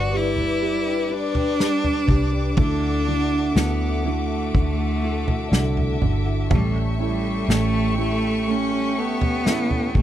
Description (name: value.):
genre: pop ballad.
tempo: 61 BPM.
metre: 4/4.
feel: straight.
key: G major.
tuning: A4 = 440 Hz.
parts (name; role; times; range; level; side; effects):
clear cello; melody; 0.0-10.0 s; G3 to F#4; -24 LUFS; equal; slapback echo.
felt-muted upright piano; accompaniment; 0.0-10.0 s; D3 to E4; -28 LUFS; right 12 dB; none.
warm studio string section; sustained chords; 0.0-10.0 s; A4 to D6; -30 LUFS; left 5 dB; none.
fingerpicked plugged-in steel-string acoustic guitar; arpeggios; 0.0-10.0 s; A2 to B4; -31 LUFS; left 5 dB; none.
vintage muted fingered electric bass; bass; 0.0-10.0 s; G1 to D2; -24 LUFS; equal; none.
unplugged drum kit; drums; 0.4-10.0 s; kick drum, snare drum, toms; -22 LUFS; equal; none.
room: little or no reverb.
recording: dry, close 1970s-style studio recording.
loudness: -19 LUFS.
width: side -11 dB against mid.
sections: 0.0-10.0 A section.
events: none.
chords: 0.0 G; 2.6 Dadd9; 6.5 A7.